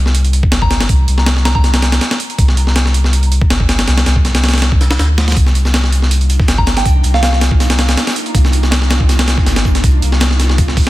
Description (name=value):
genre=drum and bass, jungle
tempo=161 BPM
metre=4/4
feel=straight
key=C minor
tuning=A4 = 440 Hz
part: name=soft dub sub bass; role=bass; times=0.0-10.9 s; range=G1 to D2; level=-13 LUFS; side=equal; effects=tube saturation
part: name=breakbeat sampler-style drum kit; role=drums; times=0.1-10.9 s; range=hi-hat, kick drum, snare drum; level=-13 LUFS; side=equal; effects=studio reverb
part: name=soft synth bell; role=melody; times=0.6-1.8, 6.6-7.3 s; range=F5 to Bb5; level=-23 LUFS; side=right 1 dB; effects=chorus, dub echo
part: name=ethereal airy pad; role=sustained chords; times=6.0-10.9 s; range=Bb3 to F4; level=-24 LUFS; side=right 1 dB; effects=ensemble chorus, built-in reverb
part: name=crunchy breakbeat drum kit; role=drums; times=5.4-10.9 s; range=hi-hat, snare drum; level=-29 LUFS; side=left 1 dB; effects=none
room=studio reverb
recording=dense, heavily limited modern master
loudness=-10 LUFS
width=side -16 dB against mid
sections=0.0-10.9 A section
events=none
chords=0.0 Gsus4; 5.4 Cm11